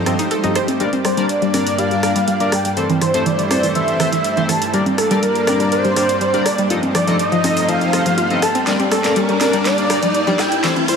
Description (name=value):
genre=progressive house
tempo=122 BPM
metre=4/4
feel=straight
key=G minor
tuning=A4 = 440 Hz
part: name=wide unison lead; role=melody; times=0.0-11.0 s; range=A4 to A5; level=-19 LUFS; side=equal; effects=ping-pong delay
part: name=supersaw pad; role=sustained chords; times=0.0-11.0 s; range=G2 to D5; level=-23 LUFS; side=right 1 dB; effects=none
part: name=chorused polysynth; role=stabs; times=0.0-10.7 s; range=G2 to Eb5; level=-22 LUFS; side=left 3 dB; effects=cassette tape, ping-pong delay
part: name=swell and riser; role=sound effects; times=0.0-11.0 s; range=none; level=-26 LUFS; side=equal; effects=none
part: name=drifting glass-harmonics texture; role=texture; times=0.0-0.8 s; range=G4 to G5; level=-35 LUFS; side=right 3 dB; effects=none
part: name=analog pluck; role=arpeggios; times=0.1-10.8 s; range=E3 to C5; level=-22 LUFS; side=left 1 dB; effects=chorus, ping-pong delay
part: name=deep house drum kit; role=drums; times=0.1-11.0 s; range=hi-hat, snare drum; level=-25 LUFS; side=right 1 dB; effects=high-pass filter on hats, high-pass filter on snare
part: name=electronic rim click and congas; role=percussion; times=0.1-11.0 s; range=none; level=-25 LUFS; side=equal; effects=none
room=moderate lush hall reverb, RT60 1.8 s, digital ambience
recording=high-pass filter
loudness=-14 LUFS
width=side -6 dB against mid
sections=0.8-11.0 A section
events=swell 0.0-0.8; build-up 0.8-11.0; riser 0.8-11.0; filter sweep on synth arpeggio sound 0.8-11.0; drum fill 8.7-11.0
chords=0.0 F7/G; 0.8 Gm; 2.8 Am; 4.7 Gm; 6.7 F7; 8.7 Gm